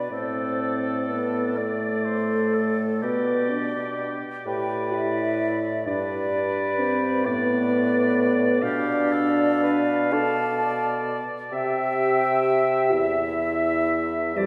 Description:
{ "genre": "classical, slow romantic movement for wind quintet", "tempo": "42 BPM (dotted quarters)", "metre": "6/8", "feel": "uneven beats, rubato", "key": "G major, C major from 8.6 s", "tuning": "A4 = 440 Hz", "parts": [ { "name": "mellow hollow silver concert flute", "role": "melody", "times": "0.0-14.5 s", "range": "G4 to A5", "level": "-31 LUFS", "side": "equal", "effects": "none" }, { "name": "mellow oboe", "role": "second line", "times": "0.0-14.5 s", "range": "G4 to E5", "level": "-32 LUFS", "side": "equal", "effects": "none" }, { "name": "bright clarinet", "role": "accompaniment", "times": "0.0-14.5 s", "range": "D5 to F5", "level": "-32 LUFS", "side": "equal", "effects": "none" }, { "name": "warm bassoon", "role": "bass", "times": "0.0-14.5 s", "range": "E2 to C3", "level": "-32 LUFS", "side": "equal", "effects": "none" }, { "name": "dark French horn", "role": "accompaniment", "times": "0.1-14.5 s", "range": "G3 to A4", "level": "-28 LUFS", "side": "equal", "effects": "none" } ], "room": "wet concert hall reverb, RT60 2.0 s", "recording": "heard from further back in the room", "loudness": "-24 LUFS", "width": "mono", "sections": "0.0-14.5 A section", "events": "none", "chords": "0.1 D5/A; 3.0 G/B; 5.9 G; 8.6 Bm7b5; 11.5 C", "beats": "| 0.12 1.57 | 3.03 4.46 | 5.87 7.25 | 8.63 10.13 | 11.52 12.93 | 14.37" }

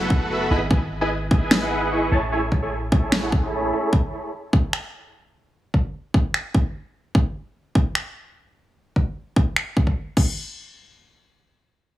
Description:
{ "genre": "future bass", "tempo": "149 BPM", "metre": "4/4", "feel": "half-time", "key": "unclear", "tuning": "A4 = 440 Hz", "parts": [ { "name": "glassy digital keys", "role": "accompaniment", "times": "0.0-0.5 s", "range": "F#3 to A4", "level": "-31 LUFS", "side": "left 1 dB", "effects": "chorus, sidechain pumping, digital delay" }, { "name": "dense compressed supersaw", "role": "riff", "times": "0.0-3.9 s", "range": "E4 to C#6", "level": "-23 LUFS", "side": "right 1 dB", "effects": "sidechain pumping, low-pass filter, digital delay" }, { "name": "warm 808-style bass", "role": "bass", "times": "0.0-3.7 s", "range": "F#1 to A1", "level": "-28 LUFS", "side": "equal", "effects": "sidechain pumping" }, { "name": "electronic kick drum", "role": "drums", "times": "0.1-10.3 s", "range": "none", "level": "-19 LUFS", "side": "equal", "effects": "overdrive" }, { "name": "pop drum kit", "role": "drums", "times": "1.5-10.3 s", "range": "crash cymbal, finger snaps, snare drum", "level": "-22 LUFS", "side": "equal", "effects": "overdrive" } ], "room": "light reverb", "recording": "heavily compressed radio sound, small room ambience", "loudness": "-20 LUFS", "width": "side -14 dB against mid", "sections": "0.0-10.4 A section; 10.4-12.0 B section", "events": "filter sweep on supersaw synth 0.0-3.9", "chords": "0.0 F#m11; 0.5 Emaj7/G#; 2.1 Amaj7; 3.9 N.C.", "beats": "0.30 | 0.71 1.11 1.51 1.91 | 2.32 2.72 3.12 3.52 | 3.93 4.33 4.73 5.13 | 5.54 5.94 6.34 6.75 | 7.15 7.55 7.95 8.36 | 8.76 9.16 9.56 9.97" }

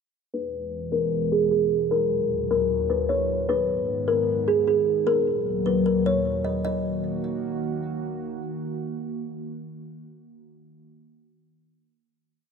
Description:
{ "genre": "hip hop, trap", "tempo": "152 BPM", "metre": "4/4", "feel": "half-time", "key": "Eb phrygian", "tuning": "A4 = 440 Hz", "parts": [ { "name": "kalimba", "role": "melody", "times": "0.3-7.8 s", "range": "G#4 to Eb5", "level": "-23 LUFS", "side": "equal", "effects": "low-pass filter, digital delay" }, { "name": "warbly tape-like pad", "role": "sustained chords", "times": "0.7-10.6 s", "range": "Eb2 to Gb4", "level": "-28 LUFS", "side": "equal", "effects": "chorus, built-in reverb, low-pass filter" } ], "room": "moderate lush hall reverb, RT60 2.4 s", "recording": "dark, warm production", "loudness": "-22 LUFS", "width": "side -6 dB against mid", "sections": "0.3-6.6 breakdown; 6.6-9.8 final chord", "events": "filter sweep 0.3-6.6", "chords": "0.3 E; 1.9 Ebm; 3.5 Abm; 5.1 Ebm", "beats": "| 0.33 0.72 1.12 1.51 | 1.91 2.30 2.70 3.09 | 3.49 3.88 4.28 4.67 | 5.07 5.46 5.86 6.25 | 6.65 7.04 7.44 7.83 | 8.22 8.62 9.02 9.41" }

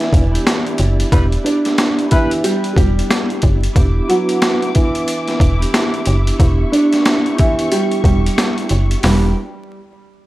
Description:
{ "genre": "hip hop, boom-bap hip-hop", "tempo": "91 BPM", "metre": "4/4", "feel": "swing 61% on 16ths", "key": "E dorian", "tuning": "A4 = 440 Hz", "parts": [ { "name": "nylon-string guitar", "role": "melody", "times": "0.0-9.3 s", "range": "E3 to D5", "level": "-18 LUFS", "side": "right 1 dB", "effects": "high-pass filter, low-pass filter" }, { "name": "vibraphone with soft mallets", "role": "accompaniment", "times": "0.0-9.3 s", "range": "B3 to B4", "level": "-22 LUFS", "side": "right 1 dB", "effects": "high-pass filter, low-pass filter" }, { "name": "warm studio string section", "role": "sustained chords", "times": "0.0-9.3 s", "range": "E3 to D6", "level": "-29 LUFS", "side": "equal", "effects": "high-pass filter, low-pass filter" }, { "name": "boom bap sampler-style drum kit", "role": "drums", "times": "0.0-9.2 s", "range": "hi-hat, kick drum, rim click, snare drum", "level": "-17 LUFS", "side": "equal", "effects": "none" }, { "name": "metallic FM bass", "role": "bass", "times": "0.1-9.3 s", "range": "E1 to F#1", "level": "-15 LUFS", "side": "equal", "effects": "none" }, { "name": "clear horn section", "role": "stabs", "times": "1.1-2.3 s", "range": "G3 to B4", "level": "-26 LUFS", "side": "left 2 dB", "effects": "high-pass filter, low-pass filter, tape echo" } ], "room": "little or no reverb", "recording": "dry, gritty hardware recording, vinyl crackle", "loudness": "-13 LUFS", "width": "side -17 dB against mid", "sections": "0.0-3.8 A section; 3.8-9.0 B section; 9.0-10.3 C section", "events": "none", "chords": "0.0 Em7", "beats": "0.46 | 1.12 1.78 2.44 3.10 | 3.76 4.42 5.08 5.74 | 6.39 7.05 7.71 8.37 | 9.03" }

